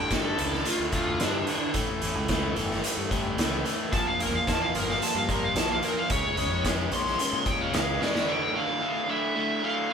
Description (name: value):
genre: quiet-loud alternative rock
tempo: 110 BPM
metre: 4/4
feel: straight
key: D harmonic minor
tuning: A4 = 440 Hz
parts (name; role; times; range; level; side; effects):
- high-gain lead guitar; melody; 0.0-9.9 s; D4 to C6; -28 LUFS; equal; distortion
- overdriven electric guitar; riff; 0.0-9.9 s; D2 to C#4; -29 LUFS; equal; none
- fuzz fingered electric bass; bass; 0.0-8.0 s; G1 to Bb2; -34 LUFS; equal; overdrive
- oversized low-tuned drum kit; drums; 0.1-8.3 s; hi-hat, kick drum, snare drum; -29 LUFS; equal; none
room: moderate large studio reverb, RT60 1.2 s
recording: band playing live in one room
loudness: -24 LUFS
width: side -6 dB against mid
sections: 0.0-8.3 A section; 8.3-9.9 B section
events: lead electric guitar solo 0.0-8.3; drum fill 8.0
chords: 0.0 D5; 1.7 A; 3.9 Bb5; 6.1 C#; 8.3 Dm